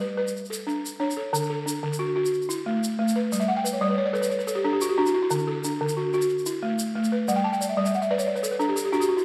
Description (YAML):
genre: west african traditional, West African string and xylophone music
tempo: 121 BPM (dotted quarters)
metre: 12/8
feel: straight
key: unclear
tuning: A4 = 440 Hz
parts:
  - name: balafon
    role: arpeggios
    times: 0.0-9.2 s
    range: D3 to A5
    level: -26 LUFS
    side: equal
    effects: none
  - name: tube shaker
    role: percussion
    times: 0.3-9.2 s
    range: none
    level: -39 LUFS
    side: equal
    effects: none
room: wet recital hall reverb, RT60 1.8 s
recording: none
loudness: -26 LUFS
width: mono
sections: 0.0-1.3 A section; 1.3-9.2 B section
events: balafon fill 3.4-5.3, 7.3-9.2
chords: 0.0 G; 1.3 D; 3.3 G; 5.3 D; 7.3 G